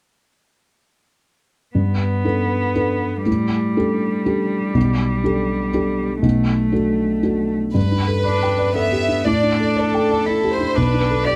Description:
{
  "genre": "neoclassical piano and strings",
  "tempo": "120 BPM",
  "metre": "3/4",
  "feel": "rubato",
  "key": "G major",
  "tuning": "A4 = 440 Hz",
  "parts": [
    { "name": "felt-muted upright piano", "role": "accompaniment", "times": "1.7-11.4 s", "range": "B1 to G5", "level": "-21 LUFS", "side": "equal", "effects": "none" },
    { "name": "rich cello", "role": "second line", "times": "1.8-11.4 s", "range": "G3 to G4", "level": "-25 LUFS", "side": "equal", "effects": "none" },
    { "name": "warm chamber violin section", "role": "melody", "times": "7.8-11.4 s", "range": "A4 to E5", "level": "-23 LUFS", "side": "equal", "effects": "none" }
  ],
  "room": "light reverb",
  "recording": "close, detailed microphones",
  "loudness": "-19 LUFS",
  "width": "mono",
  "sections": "1.8-7.8 A section; 7.8-11.4 B section",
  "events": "none",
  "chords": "1.8 Gadd9; 3.3 Dsus4/A; 4.8 Gadd9/B; 6.2 Bm7; 7.8 Gadd9; 9.3 Dsus4/A; 10.8 Gadd9/B (rootless)"
}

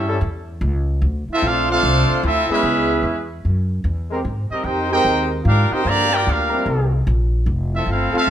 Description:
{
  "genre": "jazz",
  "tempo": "149 BPM",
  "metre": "4/4",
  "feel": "swing 64% on 8ths",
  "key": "unclear",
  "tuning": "A4 = 439 Hz",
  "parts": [
    { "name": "clear trumpet section", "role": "melody", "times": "0.0-8.3 s", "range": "C4 to Bb5", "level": "-19 LUFS", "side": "equal", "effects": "none" },
    { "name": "mellow trombone section", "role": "second line", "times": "0.0-8.3 s", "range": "D3 to G4", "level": "-23 LUFS", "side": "right 1 dB", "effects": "none" },
    { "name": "upright bass", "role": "bass", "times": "0.0-8.3 s", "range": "F1 to Ab2", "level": "-20 LUFS", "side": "equal", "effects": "none" },
    { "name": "warm trombone section", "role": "sustained chords", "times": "0.1-8.3 s", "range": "F3 to B4", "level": "-25 LUFS", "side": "left 1 dB", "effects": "none" }
  ],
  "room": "moderate large studio reverb, RT60 1.1 s",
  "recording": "none",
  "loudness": "-16 LUFS",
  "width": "side -10 dB against mid",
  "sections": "0.0-8.3 A section",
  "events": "none",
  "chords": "0.0 A7; 1.0 Dm7; 2.6 Dbm7; 3.4 Gb7sus2; 4.3 Abmaj9; 5.9 Gm7; 6.7 C7; 7.5 Fmaj7"
}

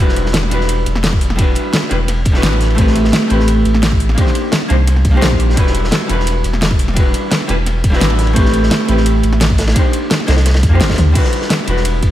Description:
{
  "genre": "liquid drum and bass",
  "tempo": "172 BPM",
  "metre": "4/4",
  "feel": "straight",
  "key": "E minor",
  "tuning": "A4 = 440 Hz",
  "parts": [
    { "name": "archtop guitar, miked and amplified", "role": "accompaniment", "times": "0.0-12.1 s", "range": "G3 to C5", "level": "-17 LUFS", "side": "equal", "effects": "tape echo" },
    { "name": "warm sub bass", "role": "bass", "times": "0.0-12.1 s", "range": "E1 to F2", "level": "-15 LUFS", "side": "equal", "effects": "none" },
    { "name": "crunchy breakbeat drum kit", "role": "drums", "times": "0.1-12.1 s", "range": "ride cymbal, snare drum", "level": "-24 LUFS", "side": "equal", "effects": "high-pass filter on cymbals, high-pass filter on snare, high-pass filter on room" },
    { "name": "pop drum kit", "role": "drums", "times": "0.2-12.1 s", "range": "crash cymbal, hi-hat, snare drum, toms", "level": "-19 LUFS", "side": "equal", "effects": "none" },
    { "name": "electronic kick drum", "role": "drums", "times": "1.1-12.1 s", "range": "none", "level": "-15 LUFS", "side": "equal", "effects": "none" }
  ],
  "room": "moderate lush hall reverb, RT60 2.0 s",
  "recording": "dreamy mix soaked in reverb",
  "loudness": "-11 LUFS",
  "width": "side -13 dB against mid",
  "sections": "0.0-11.2 A section",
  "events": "drop 0.0-11.2; drum fill 10.9; band accent 11.1",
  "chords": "0.0 Em9; 2.8 Am9; 4.2 Cm9; 5.6 Em9; 8.4 Am9; 9.8 Cm9; 11.2 Em9"
}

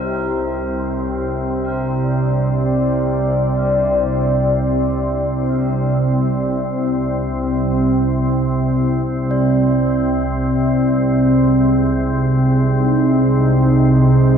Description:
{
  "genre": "dark ambient drone",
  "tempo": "free time",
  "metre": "none",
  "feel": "none",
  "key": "C minor",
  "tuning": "A4 = 439 Hz",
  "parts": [
    { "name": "deep dark ambient pad", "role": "sustained chords", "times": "0.0-14.4 s", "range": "C4 to Eb5", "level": "-18 LUFS", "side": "equal", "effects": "chorus, built-in reverb" },
    { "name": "tubular bells", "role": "arpeggios", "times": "0.0-9.3 s", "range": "C4 to Bb4", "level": "-33 LUFS", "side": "right 2 dB", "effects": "diffuse ambient delay" },
    { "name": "organ-like drone", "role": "drone", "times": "0.0-14.4 s", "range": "C2 to C3", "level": "-17 LUFS", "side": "right 1 dB", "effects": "ensemble chorus, built-in reverb" },
    { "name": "bronze singing bowl", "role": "texture", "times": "0.0-14.4 s", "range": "Bb4 to D5", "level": "-30 LUFS", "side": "left 4 dB", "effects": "none" }
  ],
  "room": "wet cathedral reverb, RT60 5.9 s",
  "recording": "none",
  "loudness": "-15 LUFS",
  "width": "side -7 dB against mid",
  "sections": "0.0-14.4 A section",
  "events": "fade-out on singing bowl 0.0-14.4",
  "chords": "0.0 Cm; 9.3 Ab/C"
}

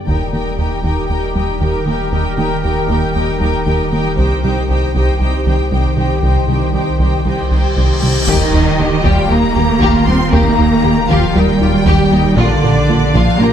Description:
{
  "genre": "cinematic, hybrid orchestral and electronic film score",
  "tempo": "117 BPM",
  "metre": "4/4",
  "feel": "straight",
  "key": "unclear",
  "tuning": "A4 = 440 Hz",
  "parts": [
    { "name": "deep dark ambient pad", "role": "sustained chords", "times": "0.0-13.5 s", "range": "Eb3 to C5", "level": "-22 LUFS", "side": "equal", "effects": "chorus, built-in reverb" },
    { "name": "warm symphonic violin section", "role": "second line", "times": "0.1-13.5 s", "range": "Bb4 to C6", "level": "-21 LUFS", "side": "left 4 dB", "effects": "none" },
    { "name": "warm studio viola section", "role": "accompaniment", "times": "0.1-13.5 s", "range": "D4 to G4", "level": "-23 LUFS", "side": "right 1 dB", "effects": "none" },
    { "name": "soft round pluck", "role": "arpeggios", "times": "0.1-13.5 s", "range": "C3 to Bb4", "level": "-24 LUFS", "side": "left 2 dB", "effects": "chorus, digital delay" },
    { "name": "rubbery square bass", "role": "riff", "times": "0.1-13.5 s", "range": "C2 to Bb3", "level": "-18 LUFS", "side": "right 1 dB", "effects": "none" },
    { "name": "dark symphonic cello section", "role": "bass", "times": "0.1-13.5 s", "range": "C2 to C4", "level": "-18 LUFS", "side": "right 2 dB", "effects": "none" },
    { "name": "punchy sub bass", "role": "bass", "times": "0.1-13.5 s", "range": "Eb1 to C2", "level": "-21 LUFS", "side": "equal", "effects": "none" },
    { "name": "taiko ensemble", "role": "drums", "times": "0.1-1.1, 4.2-5.2, 8.3-13.5 s", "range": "none", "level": "-23 LUFS", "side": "equal", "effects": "none" },
    { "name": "cymbal swell and impact", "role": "sound effects", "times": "7.5-10.3 s", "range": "none", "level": "-23 LUFS", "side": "left 1 dB", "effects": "none" },
    { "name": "warm symphonic violin section", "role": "melody", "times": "8.3-13.5 s", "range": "F4 to G4", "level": "-23 LUFS", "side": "left 4 dB", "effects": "none" },
    { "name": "mellow French horn section", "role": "sustained chords", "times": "8.3-13.5 s", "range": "F4 to Bb4", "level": "-26 LUFS", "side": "left 1 dB", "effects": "none" },
    { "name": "warm symphonic double bass section", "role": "bass", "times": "8.3-13.5 s", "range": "Bb1 to Eb2", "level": "-22 LUFS", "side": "right 4 dB", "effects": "none" }
  ],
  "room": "moderate scoring stage reverb, RT60 1.8 s",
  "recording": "none",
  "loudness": "-11 LUFS",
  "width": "side -9 dB against mid",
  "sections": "0.1-8.3 A section; 8.3-13.5 B section",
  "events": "cymbal swell 7.5-8.3; impact 8.3-10.3",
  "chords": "0.1 Eb; 4.2 Cm; 8.3 Eb; 12.4 Bb"
}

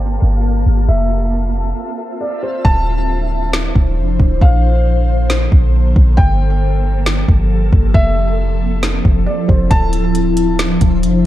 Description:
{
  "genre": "hip hop, atmospheric cloud-rap",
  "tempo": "136 BPM",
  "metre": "4/4",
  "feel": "half-time",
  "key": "unclear",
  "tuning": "A4 = 445 Hz",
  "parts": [
    { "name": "ethereal airy pad", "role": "sustained chords", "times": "0.0-11.3 s", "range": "D3 to A5", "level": "-19 LUFS", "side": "left 2 dB", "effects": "ensemble chorus, built-in reverb, phaser" },
    { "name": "clean 808-style bass", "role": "bass", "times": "0.0-11.2 s", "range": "D1 to Bb1", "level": "-14 LUFS", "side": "equal", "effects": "none" },
    { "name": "twinkling granular texture", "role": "texture", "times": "0.0-2.6, 10.9-11.3 s", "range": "F3 to E5", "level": "-34 LUFS", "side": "equal", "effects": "built-in reverb" },
    { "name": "felt-muted upright piano", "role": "melody", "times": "0.9-10.6 s", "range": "C5 to A5", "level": "-23 LUFS", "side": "equal", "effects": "digital delay" },
    { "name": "smooth R&B drum kit", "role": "drums", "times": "2.6-11.1 s", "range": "hi-hat, kick drum, snare drum", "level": "-14 LUFS", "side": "equal", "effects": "none" }
  ],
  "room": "little or no reverb",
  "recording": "dark, warm production, low-pass filter",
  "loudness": "-12 LUFS",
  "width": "side -14 dB against mid",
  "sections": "0.0-2.6 A section; 2.6-11.3 B section",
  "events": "filter sweep 0.0-2.6; break 1.8-2.6; hi-hats muted 2.6-9.7",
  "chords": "0.0 Gm9; 0.9 Fmaj7; 2.6 Dm9; 4.4 Bbmaj9; 6.2 Gm9; 7.9 Fmaj7; 9.7 Dm9"
}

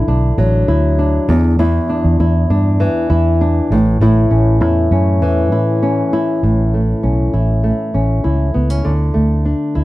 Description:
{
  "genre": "acoustic pop",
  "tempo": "99 BPM",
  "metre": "4/4",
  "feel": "straight",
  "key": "unclear",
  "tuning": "A4 = 442 Hz",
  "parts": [
    { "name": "flamenco guitar", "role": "accompaniment", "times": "0.0-9.8 s", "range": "E2 to E4", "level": "-15 LUFS", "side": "equal", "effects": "none" },
    { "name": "vintage muted fingered electric bass", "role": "bass", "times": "0.0-9.8 s", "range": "A1 to A2", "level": "-14 LUFS", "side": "equal", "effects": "none" }
  ],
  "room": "small room ambience",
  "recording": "dry, close 1970s-style studio recording",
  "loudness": "-12 LUFS",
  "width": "side -17 dB against mid",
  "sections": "0.0-6.4 A section; 6.4-9.8 B section",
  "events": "none",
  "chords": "0.0 Dadd9; 1.3 Em7; 3.7 A; 8.8 Dsus2"
}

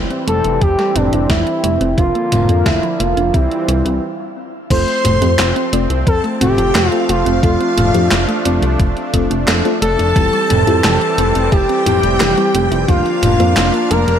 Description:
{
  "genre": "synthwave",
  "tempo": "88 BPM",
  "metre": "4/4",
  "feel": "straight",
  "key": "F major",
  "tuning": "A4 = 440 Hz",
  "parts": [
    { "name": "soft supersaw", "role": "sustained chords", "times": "0.0-14.2 s", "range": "D3 to D4", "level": "-22 LUFS", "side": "right 1 dB", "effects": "sidechain pumping, shimmer reverb" },
    { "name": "thumb-piano-like synth pluck", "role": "arpeggios", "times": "0.0-14.1 s", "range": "D3 to F4", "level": "-24 LUFS", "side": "right 3 dB", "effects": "chorus, ping-pong delay, shimmer reverb" },
    { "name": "chorused synth bass", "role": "bass", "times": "0.0-14.2 s", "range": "F1 to F2", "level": "-18 LUFS", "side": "equal", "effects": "none" },
    { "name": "gated 80s digital drum machine", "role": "drums", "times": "0.1-14.2 s", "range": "crash cymbal, handclaps, hi-hat, snare drum, toms", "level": "-19 LUFS", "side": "equal", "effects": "gated reverb, gated reverb snare" },
    { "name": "expressive portamento lead", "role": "melody", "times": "0.3-14.2 s", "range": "D4 to C5", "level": "-17 LUFS", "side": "equal", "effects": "chorus, ping-pong delay, shimmer reverb" },
    { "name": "electronic kick drum", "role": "drums", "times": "0.6-13.0 s", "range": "none", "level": "-16 LUFS", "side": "equal", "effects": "none" },
    { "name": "string machine, violins", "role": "second line", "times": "4.7-14.2 s", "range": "F5 to C6", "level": "-25 LUFS", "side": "equal", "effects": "ensemble chorus, ping-pong delay, shimmer reverb" },
    { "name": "FM electric piano with soft pad layer", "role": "stabs", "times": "4.7-14.1 s", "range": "F3 to D5", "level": "-22 LUFS", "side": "left 6 dB", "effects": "chorus, tremolo, ping-pong delay, shimmer reverb" }
  ],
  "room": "light reverb, digital ambience",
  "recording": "none",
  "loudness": "-12 LUFS",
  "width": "side -8 dB against mid",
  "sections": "0.0-4.7 A section; 4.7-14.2 B section",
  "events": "stop 4.0-4.7",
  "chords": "0.0 C/F; 2.0 Bb/F; 3.3 C; 4.7 F; 10.2 C/F; 12.9 Bb/F"
}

